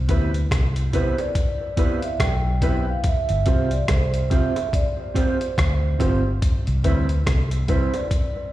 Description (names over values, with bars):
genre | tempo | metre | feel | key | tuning
roots reggae | 71 BPM | 4/4 | swing 59% on 16ths | C major | A4 = 440 Hz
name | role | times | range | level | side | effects
vintage muted fingered electric bass | bass | 0.0-7.9 s | G1 to D2 | -22 LUFS | equal | none
mellow electric guitar | accompaniment | 0.1-7.9 s | G3 to C5 | -28 LUFS | right 5 dB | dub echo, plate reverb, slapback echo
warm upright piano | stabs | 0.1-8.4 s | C4 to C5 | -31 LUFS | left 5 dB | plate reverb, slapback echo
boom bap sampler-style drum kit | drums | 0.1-8.3 s | hi-hat, kick drum, rim click | -22 LUFS | equal | none
bongos | percussion | 0.5-8.1 s | none | -34 LUFS | right 5 dB | slapback echo
vibraphone with soft mallets | melody | 0.9-8.5 s | C5 to G5 | -28 LUFS | right 3 dB | dub echo, plate reverb, slapback echo
room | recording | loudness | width
light reverb | live gig heard through the venue's PA, recital hall reverb | -19 LUFS | side -15 dB against mid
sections
0.0-8.5 A section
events
none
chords
0.0 Cmaj7; 3.0 G7sus4; 6.4 Cmaj7